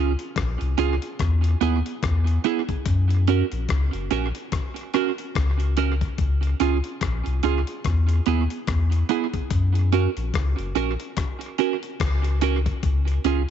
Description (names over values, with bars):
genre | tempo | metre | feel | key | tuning
roots reggae | 72 BPM | 4/4 | swing 59% on 16ths | unclear | A4 = 440 Hz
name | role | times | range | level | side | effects
clean electric guitar | accompaniment | 0.0-13.4 s | B3 to Bb4 | -26 LUFS | right 12 dB | wide subtle chorus, tape echo
warm sub bass | bass | 0.0-13.5 s | Gb1 to Gb2 | -21 LUFS | left 1 dB | none
dusty soul sampler-style drum kit | drums | 0.2-13.5 s | hi-hat, kick drum, rim click | -29 LUFS | left 5 dB | tape echo
room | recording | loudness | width
light reverb | 1960s-style stereo, nothing above 7.9 kHz | -21 LUFS | side -9 dB against mid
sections
0.0-13.5 A section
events
none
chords
0.0 Db; 1.2 E; 2.9 Gb; 6.2 Db; 7.8 E; 9.5 Gb; 12.8 Db